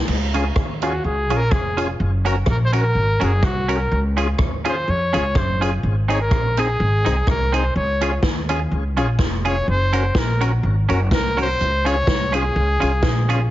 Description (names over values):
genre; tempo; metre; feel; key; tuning
ska; 125 BPM; 4/4; swing 55% on 8ths; Db major; A4 = 440 Hz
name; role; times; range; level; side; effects
upright bass; bass; 0.1-13.4 s; F1 to F2; -20 LUFS; equal; none
swinging big-band drum kit; drums; 0.1-13.4 s; crash cymbal, hi-hat, kick drum, rim click, snare drum; -23 LUFS; equal; none
semi-hollow electric guitar; accompaniment; 0.3-13.4 s; C4 to Bb4; -27 LUFS; right 5 dB; warbly pitch drift
tonewheel organ; stabs; 0.3-13.4 s; C4 to Bb4; -28 LUFS; left 4 dB; overdrive, fast rotary speaker, tape echo
breathy trumpet; melody; 0.8-13.5 s; Gb4 to Db5; -23 LUFS; equal; none
room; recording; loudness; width
light reverb, small room ambience; heavily compressed radio sound, multiband compression, cassette tape, nothing above 7.5 kHz; -17 LUFS; side -14 dB against mid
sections
0.1-13.5 A section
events
trumpet solo 0.1-13.5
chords
0.1 Db; 2.0 Gb; 3.9 Db; 5.8 Ab; 7.8 Db; 9.7 Gb; 11.6 Db